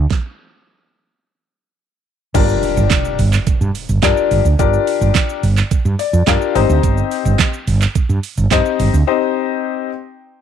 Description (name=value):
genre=dance-pop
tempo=107 BPM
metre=4/4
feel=straight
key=G minor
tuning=A4 = 440 Hz
part: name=woody fretless electric bass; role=bass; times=0.0-9.0 s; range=G1 to G2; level=-14 LUFS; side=right 2 dB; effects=sidechain pumping
part: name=smooth R&B drum kit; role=drums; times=0.1-9.1 s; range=crash cymbal, handclaps, hi-hat, kick drum, shaker, snare drum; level=-18 LUFS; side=right 4 dB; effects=none
part: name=warm concert grand piano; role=accompaniment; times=2.3-9.9 s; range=C4 to Bb5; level=-17 LUFS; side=left 11 dB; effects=none
part: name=impact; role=sound effects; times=2.3-4.6 s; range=none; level=-25 LUFS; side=right 1 dB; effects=none
room=light reverb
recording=1960s-style stereo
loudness=-13 LUFS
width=side -9 dB against mid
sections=0.0-2.3 A section; 2.3-10.4 B section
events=stop 0.1-2.3; impact 2.3-4.6; grand piano fill 5.7-6.8; break 9.1-10.4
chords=0.0 N.C.; 2.3 Gm7; 6.6 Cm/G